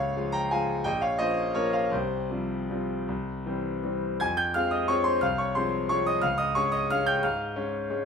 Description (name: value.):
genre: classical, piano waltz.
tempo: 150-190 BPM.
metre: 3/4.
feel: rubato.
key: F minor.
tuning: A4 = 439 Hz.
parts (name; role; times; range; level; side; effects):
bright concert grand piano; solo; 0.0-8.1 s; Bb1 to Ab6; -25 LUFS; left 1 dB; none.
room: light reverb.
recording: minimal, uncompressed stereo recording.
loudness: -25 LUFS.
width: side -6 dB against mid.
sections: 0.0-4.2 A section; 4.2-8.1 B section.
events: none.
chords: 0.0 Db; 0.8 Bbm; 1.9 Csus4; 3.1 C; 4.2 Fm; 6.2 Db.